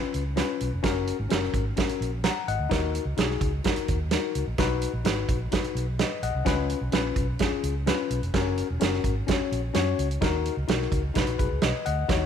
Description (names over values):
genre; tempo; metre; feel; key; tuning
uptempo 1960s-style soul; 128 BPM; 4/4; straight; B major; A4 = 441 Hz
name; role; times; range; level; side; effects
tine electric piano; accompaniment; 0.0-12.3 s; C#4 to A#5; -29 LUFS; left 12 dB; none
vintage muted fingered electric bass; bass; 0.0-12.3 s; E1 to F#2; -29 LUFS; equal; none
natural country drum kit; drums; 0.1-12.2 s; hi-hat, kick drum, snare drum; -27 LUFS; right 4 dB; none
room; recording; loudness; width
light reverb, small room ambience; 1960s-style stereo; -24 LUFS; side -8 dB against mid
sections
0.0-12.1 A section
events
none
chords
0.0 C#7; 0.8 F#; 2.7 D#m; 4.6 B; 6.5 C#7; 8.3 F#; 10.2 D#m; 11.2 B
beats
0.37 | 0.83 1.30 1.77 2.24 | 2.71 3.18 3.65 4.12 | 4.58 5.05 5.52 5.99 | 6.46 6.93 7.40 7.87 | 8.34 8.81 9.28 9.74 | 10.21 10.68 11.15 11.62 | 12.09